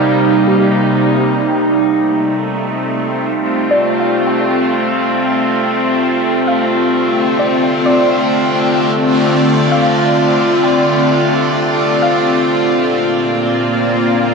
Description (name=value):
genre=ambient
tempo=65 BPM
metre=3/4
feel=straight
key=unclear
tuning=A4 = 440 Hz
part: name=evolving wavetable pad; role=sustained chords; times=0.0-14.3 s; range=Bb2 to F5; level=-12 LUFS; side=equal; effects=chorus, built-in reverb
part: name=hand-pumped harmonium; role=drone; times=0.0-14.3 s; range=C3 to G3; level=-25 LUFS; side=left 1 dB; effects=stereo widening
part: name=soft round pluck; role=arpeggios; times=0.5-12.9 s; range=G4 to G5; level=-20 LUFS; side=right 1 dB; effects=chorus, tape echo
room=wet lush hall reverb, RT60 2.6 s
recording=home recording on cassette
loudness=-11 LUFS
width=side -4 dB against mid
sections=0.0-14.3 A section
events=fade-out on harmonium 0.0-14.3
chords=0.0 Cm7; 1.4 F; 7.0 Dm7; 12.5 Bb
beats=0.49 | 1.41 2.34 3.26 | 4.18 5.11 6.03 | 6.95 7.88 8.80 | 9.72 10.64 11.57 | 12.49 13.41 14.34